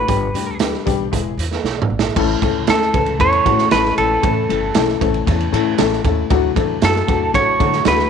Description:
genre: uptempo 1960s-style soul.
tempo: 116 BPM.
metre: 4/4.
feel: straight.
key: A mixolydian.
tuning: A4 = 439 Hz.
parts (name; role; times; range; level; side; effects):
semi-hollow electric guitar; melody; 0.0-8.1 s; A4 to C#5; -17 LUFS; right 3 dB; spring reverb.
upright bass; bass; 0.0-8.0 s; E1 to D3; -23 LUFS; equal; none.
warm upright piano; accompaniment; 0.1-8.0 s; E3 to E5; -20 LUFS; left 16 dB; none.
raw garage drum kit; drums; 0.1-8.1 s; crash cymbal, hi-hat, kick drum, ride cymbal, snare drum, toms; -20 LUFS; right 5 dB; none.
room: studio ambience.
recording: 1960s-style stereo.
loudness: -14 LUFS.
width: side -7 dB against mid.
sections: 0.0-2.2 A section; 2.2-8.1 B section.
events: drum fill 1.6-2.2.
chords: 0.1 G; 1.1 E; 2.2 A; 6.3 Dadd9.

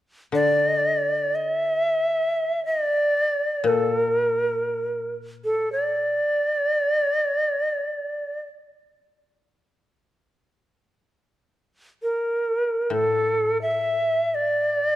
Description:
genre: japanese traditional, Japanese chamber music.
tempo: free time.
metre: none.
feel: none.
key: unclear.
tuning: A4 = 440 Hz.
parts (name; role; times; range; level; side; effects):
bright reedy shakuhachi; melody; 0.3-15.0 s; A4 to E5; -21 LUFS; equal; none.
koto; accompaniment; 0.3-6.2, 12.9-15.0 s; A2 to D3; -27 LUFS; left 5 dB; none.
room: moderate scoring stage reverb, RT60 1.6 s.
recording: dark, warm production.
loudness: -21 LUFS.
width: side -14 dB against mid.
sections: 0.0-12.9 A section; 12.9-15.0 B section.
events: none.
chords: none.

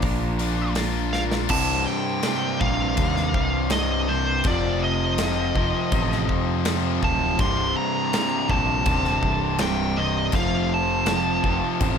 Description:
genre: quiet-loud alternative rock.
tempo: 82 BPM.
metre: 4/4.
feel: straight.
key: C dorian.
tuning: A4 = 440 Hz.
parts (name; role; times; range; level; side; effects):
nasal lead guitar with a parked wah; melody; 0.0-12.0 s; C5 to C6; -26 LUFS; right 2 dB; overdrive.
twelve-string electric guitar; arpeggios; 0.0-1.5 s; Bb2 to Bb4; -34 LUFS; left 9 dB; none.
biting overdriven guitar; riff; 0.0-12.0 s; C2 to Bb4; -28 LUFS; left 14 dB; none.
fuzz guitar; riff; 0.0-12.0 s; C2 to Bb4; -28 LUFS; right 11 dB; distortion.
growling picked electric bass; bass; 0.0-12.0 s; C1 to F2; -27 LUFS; equal; overdrive.
big rock drum kit; drums; 0.0-12.0 s; crash cymbal, hi-hat, kick drum, snare drum; -27 LUFS; equal; none.
raw garage guitar; riff; 1.5-12.0 s; C2 to F3; -31 LUFS; left 2 dB; overdrive.
room: little or no reverb.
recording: none.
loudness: -20 LUFS.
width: side -7 dB against mid.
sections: 0.0-1.5 A section; 1.5-12.0 B section.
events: drum fill 1.1-1.5.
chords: 0.0 Bb; 1.5 C5; 4.5 F7(no3); 7.4 C7(no3); 10.3 F.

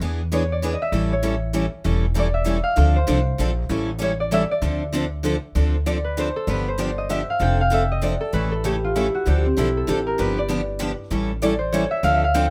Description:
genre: acoustic string swing (jazz manouche).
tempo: 194 BPM.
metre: 3/4.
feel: swing 59% on 8ths.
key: D minor, D dorian from 5.5 s.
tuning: A4 = 440 Hz.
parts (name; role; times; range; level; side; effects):
concert harp; melody; 0.0-12.5 s; C4 to G5; -26 LUFS; equal; none.
picked steel-string acoustic guitar; accompaniment; 0.0-12.5 s; C#3 to A4; -28 LUFS; equal; none.
picked steel-string acoustic guitar; accompaniment; 0.0-12.5 s; D3 to B4; -32 LUFS; equal; none.
upright bass; bass; 0.0-12.5 s; E1 to E2; -25 LUFS; equal; none.
room: light reverb.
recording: none.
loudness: -22 LUFS.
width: mono.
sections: 0.0-5.5 A section; 5.5-12.5 B section.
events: harp solo 5.5-12.5.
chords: 0.0 E7; 0.9 A7; 2.8 Dm7; 3.7 A7; 4.6 Dm7; 6.5 G7; 7.4 Dm7/F; 8.3 A; 9.3 Dm7; 10.2 G7; 11.1 A7.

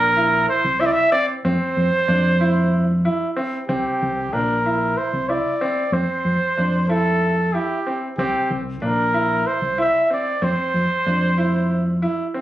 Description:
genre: progressive instrumental, band music in an uneven meter.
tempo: 187 BPM (eighths).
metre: 7/8.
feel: straight.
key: C mixolydian.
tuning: A4 = 441 Hz.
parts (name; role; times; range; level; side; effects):
mellow trumpet; melody; 0.0-12.0 s; G4 to E5; -20 LUFS; right 1 dB; none.
bright concert grand piano; arpeggios; 0.0-12.4 s; C4 to E4; -25 LUFS; right 1 dB; ping-pong delay.
fingered electric bass; bass; 0.0-12.1 s; Bb1 to F2; -21 LUFS; equal; none.
room: light reverb.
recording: recorded on a phone in the room, club reverb.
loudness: -18 LUFS.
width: side -14 dB against mid.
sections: 0.0-3.7 A section; 3.7-12.4 B section.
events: none.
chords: 0.0 C7; 1.4 F5; 3.7 C7; 5.9 Fmaj7; 8.2 C7; 10.4 F5.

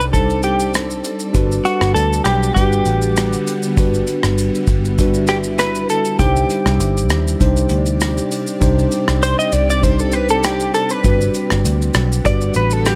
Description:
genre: indie pop, bedroom pop.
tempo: 99 BPM.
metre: 4/4.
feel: swing 55% on 16ths.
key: G major.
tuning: A4 = 442 Hz.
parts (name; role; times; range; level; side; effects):
bell-like tine electric piano; accompaniment; 0.0-13.0 s; G3 to C5; -23 LUFS; equal; cassette tape.
direct-recorded clean electric guitar; accompaniment; 0.0-13.0 s; F#4 to Eb5; -21 LUFS; equal; analog chorus, vibrato effect.
granular cloud pad; sustained chords; 0.0-13.0 s; C3 to F#5; -28 LUFS; equal; built-in reverb.
vintage muted picked electric bass; bass; 0.0-13.0 s; G1 to Eb2; -21 LUFS; equal; none.
unplugged drum kit; drums; 0.0-13.0 s; hi-hat, kick drum, rim click, shaker; -22 LUFS; equal; none.
room: small room ambience.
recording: none.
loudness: -16 LUFS.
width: mono.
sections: 0.0-13.0 A section.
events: clean electric guitar solo 0.0-13.0.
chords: 0.0 Cmadd9; 1.3 Gmaj7; 6.2 Cmadd9; 11.0 Gmaj7.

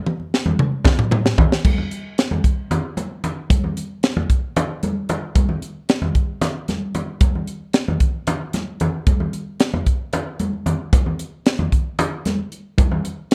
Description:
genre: jazz.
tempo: 226 BPM (eighths).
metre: 7/8.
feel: straight.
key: none.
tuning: none.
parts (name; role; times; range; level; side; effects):
crisp fusion drum kit; drums; 0.1-13.3 s; crash cymbal, hi-hat, kick drum, snare drum, toms; -20 LUFS; equal; none.
congas; percussion; 0.1-13.2 s; none; -25 LUFS; equal; none.
room: moderate club reverb, RT60 0.7 s.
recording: dark, warm production.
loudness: -21 LUFS.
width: mono.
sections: 0.0-1.6 A section; 1.6-13.3 B section.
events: drum fill 0.1-1.6.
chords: none.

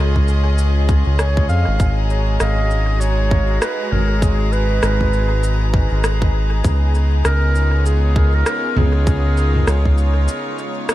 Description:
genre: ambient dub.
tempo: 99 BPM.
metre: 4/4.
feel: swing 59% on 16ths.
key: unclear.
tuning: A4 = 444 Hz.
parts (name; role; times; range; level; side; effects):
warm clarinet; melody; 0.0-10.6 s; E#4 to E#5; -24 LUFS; right 1 dB; dub echo.
rich chamber string section; sustained chords; 0.0-10.9 s; C#3 to A#5; -26 LUFS; left 1 dB; none.
round analog bass; bass; 0.0-10.3 s; G#1 to E#2; -16 LUFS; equal; none.
bubbling stepped-filter texture; texture; 0.0-10.9 s; G#3 to G#4; -29 LUFS; equal; chorus, built-in reverb.
electronic kick drum; drums; 0.2-10.0 s; none; -17 LUFS; equal; none.
organic electronic drum kit; drums; 0.3-10.9 s; rim click, shaker, toms; -24 LUFS; equal; dub echo.
room: digital ambience.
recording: none.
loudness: -14 LUFS.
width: side -15 dB against mid.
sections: 0.0-10.9 A section.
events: break 10.3-10.9.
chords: 0.0 C#; 1.8 G#m7; 6.6 C#7.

